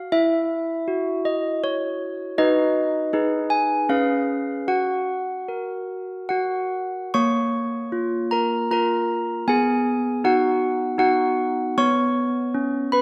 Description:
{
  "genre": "classical, tune for handbells",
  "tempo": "78 BPM",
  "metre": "3/4",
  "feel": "straight",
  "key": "F# major",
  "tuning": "A4 = 440 Hz",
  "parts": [
    { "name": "handbells", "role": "solo", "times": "0.0-13.0 s", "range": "A#3 to C#6", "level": "-22 LUFS", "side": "equal", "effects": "none" }
  ],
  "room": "moderate scoring stage reverb, RT60 1.9 s",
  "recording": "dark, warm production",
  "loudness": "-23 LUFS",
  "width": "mono",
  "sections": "0.0-7.1 A section; 7.1-13.0 B section",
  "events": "none",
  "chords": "0.1 F#5/E; 2.4 B/D#; 3.1 G#m/D#; 3.9 C#7; 4.7 F#; 7.1 A#m; 9.5 B; 11.8 C#7(no3)/B",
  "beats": "| 0.10 0.86 1.62 | 2.37 3.13 3.90 | 4.70 5.51 6.31 | 7.14 7.92 8.71 | 9.48 10.24 11.01 | 11.78 12.54"
}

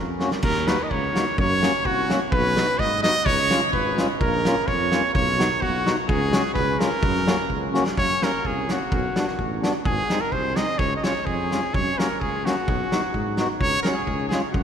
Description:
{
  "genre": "alpine folk, alpine dance band",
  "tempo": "128 BPM",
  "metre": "2/4",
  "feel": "straight",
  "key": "F# major",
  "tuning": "A4 = 440 Hz",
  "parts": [
    { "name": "bright trumpet", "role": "melody", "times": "0.0-14.6 s", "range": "F#4 to D#5", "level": "-24 LUFS", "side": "equal", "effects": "none" },
    { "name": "dark tuba", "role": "bass", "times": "0.0-14.6 s", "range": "G#1 to G#2", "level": "-28 LUFS", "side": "equal", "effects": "none" },
    { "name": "mellow accordion", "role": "accompaniment", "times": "0.2-14.4 s", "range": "G#3 to F#4", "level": "-27 LUFS", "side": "left 1 dB", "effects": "none" },
    { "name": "loose indie drum kit", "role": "drums", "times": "0.2-14.6 s", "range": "crash cymbal, hi-hat, kick drum, snare drum", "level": "-26 LUFS", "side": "equal", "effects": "none" }
  ],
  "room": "wet cathedral reverb, RT60 5.6 s",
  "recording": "recorded in a church or concert hall",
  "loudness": "-20 LUFS",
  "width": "side -8 dB against mid",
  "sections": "0.4-8.0 A section; 8.0-14.6 B section",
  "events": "drum fill 0.0-0.4, 7.7",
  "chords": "0.4 D#m7; 1.4 F#; 2.3 B; 3.3 C#; 4.2 A#m; 5.1 B; 6.1 C#sus4; 6.5 C#7; 7.0 F#; 8.9 Bm; 9.8 G#; 10.8 C#; 11.7 F#; 12.7 B; 13.6 C#sus4; 14.1 C#",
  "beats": "| 0.43 0.90 | 1.38 1.85 | 2.32 2.79 | 3.25 3.73 | 4.20 4.67 | 5.14 5.61 | 6.08 6.55 | 7.02 7.49 | 7.96 8.44 | 8.91 9.38 | 9.85 10.31 | 10.78 11.26 | 11.73 12.20 | 12.67 13.13 | 13.60 14.07 | 14.53"
}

